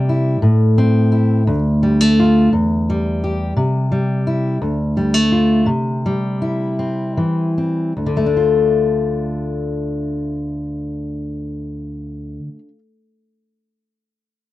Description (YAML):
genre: folk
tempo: 50-58 BPM (dotted quarters)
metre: 6/8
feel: straight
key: D minor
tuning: A4 = 440 Hz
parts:
  - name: fingerpicked steel-string acoustic guitar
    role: accompaniment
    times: 0.0-12.8 s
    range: D2 to G4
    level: -15 LUFS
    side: left 1 dB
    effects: none
room: moderate booth ambience, RT60 0.2 s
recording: dry, close 1970s-style studio recording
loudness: -15 LUFS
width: side -15 dB against mid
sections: 0.0-8.0 A section; 8.0-12.8 B section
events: slowing down 3.6-8.0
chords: 0.4 Am; 1.5 Dm; 2.5 Em; 3.6 C; 4.6 Dm; 5.7 C; 8.0 Dm